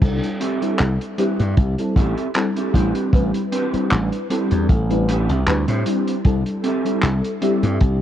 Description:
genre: vaporwave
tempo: 77 BPM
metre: 4/4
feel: swing 54% on 16ths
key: unclear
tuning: A4 = 440 Hz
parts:
  - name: FM electric piano with soft pad layer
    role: accompaniment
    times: 0.0-8.0 s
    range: G3 to B4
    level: -22 LUFS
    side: left 1 dB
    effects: tremolo, ensemble chorus, cassette tape, analog delay
  - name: slap bass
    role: bass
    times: 0.0-8.0 s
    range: A1 to A2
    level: -20 LUFS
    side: equal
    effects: none
  - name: kick drum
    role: drums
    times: 0.0-8.0 s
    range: none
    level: -17 LUFS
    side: equal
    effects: vintage 12-bit sampler grit
  - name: warm soul drum kit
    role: drums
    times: 0.0-8.0 s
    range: crash cymbal, handclaps, hi-hat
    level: -28 LUFS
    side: equal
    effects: vintage 12-bit sampler grit
  - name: mellow electric guitar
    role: riff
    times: 0.4-7.8 s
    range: C4 to C5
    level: -25 LUFS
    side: right 3 dB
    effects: ensemble chorus, analog delay
room: small room reverb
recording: dark, warm production, cassette tape, faint mains hum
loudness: -17 LUFS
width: side -11 dB against mid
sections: 0.0-8.0 A section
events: none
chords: 0.0 Am11; 6.3 C6

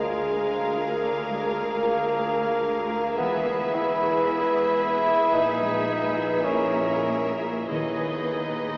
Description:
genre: classical, slow romantic movement for symphony orchestra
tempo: 46-58 BPM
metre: 4/4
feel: rubato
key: unclear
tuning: A4 = 440 Hz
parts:
  - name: rich symphonic violin section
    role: melody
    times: 0.0-8.8 s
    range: D#5 to F5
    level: -32 LUFS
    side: equal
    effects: none
  - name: warm symphonic violin section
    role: second line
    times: 0.0-8.8 s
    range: Bb4 to B4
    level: -28 LUFS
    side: equal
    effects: none
  - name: clear symphonic viola section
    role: accompaniment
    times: 0.0-8.8 s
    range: Ab4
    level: -34 LUFS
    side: equal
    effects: none
  - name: warm bassoon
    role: accompaniment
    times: 0.0-8.8 s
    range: Ab3 to E4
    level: -25 LUFS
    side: equal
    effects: none
  - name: concert harp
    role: arpeggios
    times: 0.0-8.8 s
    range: A#2 to E5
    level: -34 LUFS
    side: equal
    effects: none
  - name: clear symphonic double bass section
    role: bass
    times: 0.0-8.8 s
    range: E1 to D#2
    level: -37 LUFS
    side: equal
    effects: none
  - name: rich symphonic cello section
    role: bass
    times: 0.0-8.8 s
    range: D2 to A#2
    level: -34 LUFS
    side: equal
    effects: none
  - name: timpani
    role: percussion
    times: 7.7-8.8 s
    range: D#3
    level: -39 LUFS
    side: equal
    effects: none
room: wet cathedral reverb, RT60 4.9 s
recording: heard from further back in the room, small speaker sound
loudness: -22 LUFS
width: side -32 dB against mid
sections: 0.0-8.8 A section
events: none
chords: 0.0 Bb7/D; 3.2 E; 5.3 C#m13/A#; 7.7 G#m/D#

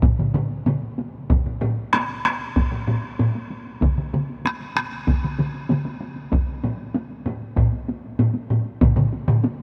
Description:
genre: japanese traditional, taiko drum ensemble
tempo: 96 BPM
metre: 4/4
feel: straight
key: none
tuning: none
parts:
  - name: solo taiko drums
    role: percussion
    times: 0.0-9.0 s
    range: none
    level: -24 LUFS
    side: equal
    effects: none
  - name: taiko ensemble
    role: percussion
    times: 0.0-9.6 s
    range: none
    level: -30 LUFS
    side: equal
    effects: none
  - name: taiko ensemble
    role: percussion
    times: 0.0-9.4 s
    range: none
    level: -25 LUFS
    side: equal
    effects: none
  - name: taiko ensemble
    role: percussion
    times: 0.0-9.4 s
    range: none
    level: -28 LUFS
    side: equal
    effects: none
room: moderate huge ambient reverb, RT60 6.6 s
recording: none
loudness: -23 LUFS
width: mono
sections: 0.0-9.6 A section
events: none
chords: none

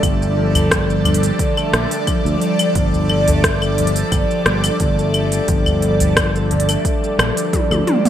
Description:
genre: organic downtempo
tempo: 88 BPM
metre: 4/4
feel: straight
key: unclear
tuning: A4 = 440 Hz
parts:
  - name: airy breathy pad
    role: sustained chords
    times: 0.0-8.1 s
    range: G3 to D5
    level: -22 LUFS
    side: right 1 dB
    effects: chorus, phaser, sidechain pumping
  - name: concert harp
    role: arpeggios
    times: 0.0-8.1 s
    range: D3 to F4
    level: -20 LUFS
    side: left 1 dB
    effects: digital delay
  - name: sustaining fretless electric bass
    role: bass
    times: 0.0-7.8 s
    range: G1 to D2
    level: -19 LUFS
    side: equal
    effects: none
  - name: electronic kick drum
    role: drums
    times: 0.0-7.7 s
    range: none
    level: -21 LUFS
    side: equal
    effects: overdrive
  - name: organic electronic drum kit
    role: drums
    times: 0.0-8.1 s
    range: claves, hi-hat, rim click, shaker, toms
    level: -20 LUFS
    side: left 1 dB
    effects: overdrive, gated reverb
  - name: udu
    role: percussion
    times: 0.2-6.7 s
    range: none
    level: -23 LUFS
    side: equal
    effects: none
room: moderate lush hall reverb, RT60 2.7 s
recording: bright 1980s-style digital production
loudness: -14 LUFS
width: side -10 dB against mid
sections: 0.0-8.1 A section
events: drum fill 7.5-8.1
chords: 0.0 G7(no3)

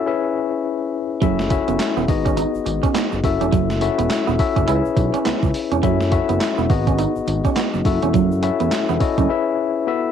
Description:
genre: R&B, new jack swing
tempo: 104 BPM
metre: 4/4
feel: swing 60% on 16ths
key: C# minor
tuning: A4 = 438 Hz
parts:
  - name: tine electric piano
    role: accompaniment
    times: 0.0-10.1 s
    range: B3 to E5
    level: -20 LUFS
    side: left 7 dB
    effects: medium stereo tremolo, cassette tape
  - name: clean electric guitar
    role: riff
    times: 1.2-9.3 s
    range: F#3 to E4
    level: -23 LUFS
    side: right 16 dB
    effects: wide subtle chorus, cassette tape
  - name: smooth synth bass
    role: bass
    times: 1.2-9.3 s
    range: E1 to C#2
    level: -23 LUFS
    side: right 1 dB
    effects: none
  - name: gated 80s digital drum machine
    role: drums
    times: 1.2-9.3 s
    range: handclaps, hi-hat, kick drum, snare drum, tambourine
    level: -22 LUFS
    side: right 1 dB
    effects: gated reverb, gated reverb snare, overdrive, cassette tape
  - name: tube shaker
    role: percussion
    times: 1.2-9.3 s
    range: none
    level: -50 LUFS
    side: left 8 dB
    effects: none
room: light reverb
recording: home recording on cassette, lossy compression artefacts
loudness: -17 LUFS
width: side -8 dB against mid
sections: 0.0-10.1 A section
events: break 9.3-10.1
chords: 0.1 C#m7; 1.2 F#m7; 2.1 G#m7; 3.2 F#m7; 4.7 C#m7; 5.8 F#m7; 6.7 G#m7; 7.9 F#m7; 9.3 C#m7

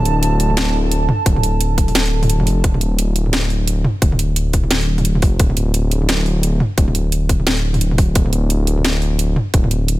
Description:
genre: half-time drum and bass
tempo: 174 BPM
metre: 4/4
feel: swing 60% on 16ths, half-time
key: unclear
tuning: A4 = 441 Hz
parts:
  - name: dark analog pad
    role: sustained chords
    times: 0.0-2.6 s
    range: D4 to A5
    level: -23 LUFS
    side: right 3 dB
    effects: chorus, sidechain pumping
  - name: dark detuned saw bass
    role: bass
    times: 0.0-10.0 s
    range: D1 to F1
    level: -17 LUFS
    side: equal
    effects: none
  - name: drum and bass drum kit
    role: drums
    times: 0.1-10.0 s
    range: hi-hat, snare drum, toms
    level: -20 LUFS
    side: right 1 dB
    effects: overdrive, studio reverb
  - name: electronic kick drum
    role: drums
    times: 1.3-9.6 s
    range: none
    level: -15 LUFS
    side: equal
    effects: overdrive, studio reverb
room: little or no reverb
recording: none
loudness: -14 LUFS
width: side -17 dB against mid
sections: 0.0-2.6 A section; 2.6-10.0 A section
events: drop 0.0-2.6, 2.6-10.0; kick drops out 1.9-2.6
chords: 0.0 D5; 2.6 N.C.

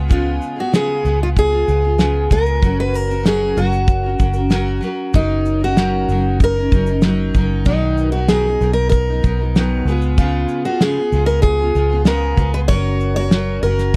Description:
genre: acoustic pop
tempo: 96 BPM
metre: 4/4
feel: straight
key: F# major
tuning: A4 = 444 Hz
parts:
  - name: picked steel-string acoustic guitar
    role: accompaniment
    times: 0.0-14.0 s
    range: B2 to A#4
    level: -24 LUFS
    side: equal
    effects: double-tracked
  - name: vintage muted fingered electric bass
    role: bass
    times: 0.0-14.0 s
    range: F#1 to C#2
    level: -21 LUFS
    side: equal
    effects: none
  - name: picked steel-string acoustic guitar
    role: melody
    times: 0.1-14.0 s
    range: D#4 to C#5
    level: -22 LUFS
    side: equal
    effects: none
  - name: cloth-damped thuddy drum kit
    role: drums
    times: 0.1-14.0 s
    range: kick drum, shaker, snare drum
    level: -17 LUFS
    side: equal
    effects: none
room: little or no reverb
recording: dry, close 1970s-style studio recording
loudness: -17 LUFS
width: mono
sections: 0.0-14.0 A section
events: none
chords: 0.0 C#7; 2.6 F#; 5.1 D#m7/F#; 7.7 Bmaj7; 9.9 C#7; 12.7 F#

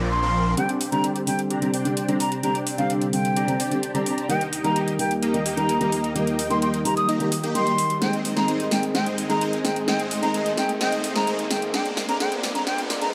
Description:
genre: EDM, festival progressive house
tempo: 129 BPM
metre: 4/4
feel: straight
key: C minor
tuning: A4 = 440 Hz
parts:
  - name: felt-muted upright piano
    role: accompaniment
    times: 0.0-13.1 s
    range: D3 to Ab4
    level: -29 LUFS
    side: equal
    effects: none
  - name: lush unison pad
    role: sustained chords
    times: 0.0-13.1 s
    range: Eb2 to G5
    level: -34 LUFS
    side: equal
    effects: chorus
  - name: supersaw chords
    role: riff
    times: 0.0-13.1 s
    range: F3 to Bb5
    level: -30 LUFS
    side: equal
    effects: analog chorus, low-pass filter
  - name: fat analog bass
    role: bass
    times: 0.0-0.6 s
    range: Bb1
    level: -29 LUFS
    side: equal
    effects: none
  - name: noise sweep and riser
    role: sound effects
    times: 0.0-13.1 s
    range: none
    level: -39 LUFS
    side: equal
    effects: none
  - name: mellow hollow jazz flute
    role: melody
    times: 0.1-13.1 s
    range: F5 to Eb6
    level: -29 LUFS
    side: equal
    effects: digital delay
  - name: big-room dance drum kit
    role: drums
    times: 0.6-13.1 s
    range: hi-hat, snare drum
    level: -32 LUFS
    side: equal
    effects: studio reverb
room: moderate lush hall reverb, RT60 2.3 s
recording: dark, warm production, high-pass filter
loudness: -23 LUFS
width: mono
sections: 0.6-13.1 A section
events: noise sweep 0.0-0.6; build-up 0.6-13.1; filter sweep on supersaw synth 0.6-13.1; drum fill 8.0-13.1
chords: 0.0 Bbadd9; 0.6 Csus2; 4.3 Eb; 8.0 Ab; 11.7 Bbadd9

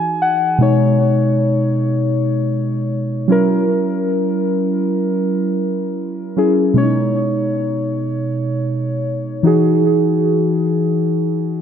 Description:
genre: R&B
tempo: free time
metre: none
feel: none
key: B major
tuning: A4 = 445 Hz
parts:
  - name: muted felt-like synth keys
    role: solo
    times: 0.0-11.6 s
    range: B2 to G#5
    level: -15 LUFS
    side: equal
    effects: chorus, digital delay
room: moderate plate reverb, RT60 2.2 s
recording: none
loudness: -15 LUFS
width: side -8 dB against mid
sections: 0.0-6.8 A section; 6.8-11.6 B section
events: synth keys fill 0.0-0.6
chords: 0.0 Emaj9; 0.6 B69; 3.3 F#7; 6.8 B69; 9.4 Emaj9

